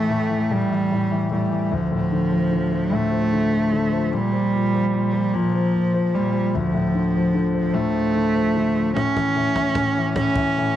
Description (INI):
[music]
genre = six-eight pop ballad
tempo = 50 BPM (dotted quarters)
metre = 6/8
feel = straight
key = D minor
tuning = A4 = 441 Hz
[part]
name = rich cello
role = melody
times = 0.0-10.8 s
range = F3 to C#4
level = -20 LUFS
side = right 2 dB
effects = cassette tape, tape echo
[part]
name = warm concert grand piano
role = accompaniment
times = 0.0-10.8 s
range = D2 to F3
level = -23 LUFS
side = left 5 dB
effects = cassette tape
[part]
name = cajon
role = drums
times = 9.0-10.5 s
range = none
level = -27 LUFS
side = right 1 dB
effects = cassette tape
[sound]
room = moderate studio reverb, RT60 0.6 s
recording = home recording on cassette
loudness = -18 LUFS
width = side -12 dB against mid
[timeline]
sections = 0.0-10.8 A section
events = drum fill 8.9-10.8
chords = 0.0 A5; 1.7 Dm; 4.1 Bb5; 6.5 Dm; 8.9 A